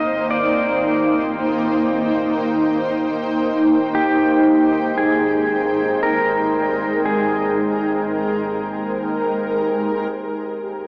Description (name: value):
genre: ambient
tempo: 58 BPM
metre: 3/4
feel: straight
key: Ab lydian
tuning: A4 = 441 Hz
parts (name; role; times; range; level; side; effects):
- pedal steel guitar; melody; 0.0-9.6 s; G4 to Eb5; -25 LUFS; equal; tape echo
- granular cloud pad; sustained chords; 0.0-10.9 s; G3 to G5; -21 LUFS; equal; built-in reverb
- celesta; arpeggios; 0.0-10.9 s; none; barely audible; none; none
- warm sub bass; bass; 0.0-10.9 s; Ab1; -44 LUFS; equal; none
room: wet huge ambient reverb, RT60 8.8 s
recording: worn, warbling old tape, cassette tape, warbly pitch drift, small speaker sound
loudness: -19 LUFS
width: mono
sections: 0.0-10.1 A section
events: none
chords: 0.0 Fm7/Ab (rootless); 3.9 Abmaj9; 10.1 Gm7/Ab